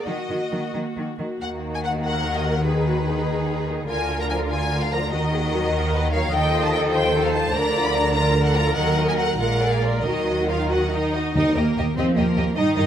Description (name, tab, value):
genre	classical, dramatic, fast romantic movement for symphony orchestra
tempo	89-101 BPM (dotted quarters)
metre	6/8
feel	rubato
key	Eb minor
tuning	A4 = 438 Hz
part	warm symphonic violin section	melody	0.0-12.9 s	Bb4 to Cb6	-27 LUFS	left 3 dB	none
part	rich symphonic violin section	second line	0.0-12.8 s	Bb3 to Eb5	-29 LUFS	left 2 dB	none
part	warm symphonic viola section	accompaniment	0.0-12.8 s	Bb3 to Eb5	-26 LUFS	right 2 dB	none
part	rich symphonic cello section	bass	0.1-12.9 s	Bb2 to F3	-27 LUFS	right 1 dB	none
part	warm symphonic double bass section	bass	1.4-12.8 s	Bb1 to G2	-25 LUFS	right 1 dB	none
part	warm French horn section	sustained chords	1.8-11.1 s	Eb3 to Bb4	-27 LUFS	equal	none
part	timpani	percussion	11.4-11.9 s	Eb3	-28 LUFS	left 1 dB	none
room	light reverb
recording	close, detailed microphones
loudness	-19 LUFS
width	side -9 dB against mid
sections	0.0-1.4 A section; 1.4-11.4 A section; 11.4-12.9 B section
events	none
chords	0.1 Ebm; 2.7 Abm/Eb; 3.9 Bb/D; 5.1 Ebm; 6.3 F7/Eb; 7.5 Bb/D; 8.8 Ebm; 9.4 Bb7; 10.1 Ebm; 11.4 Eb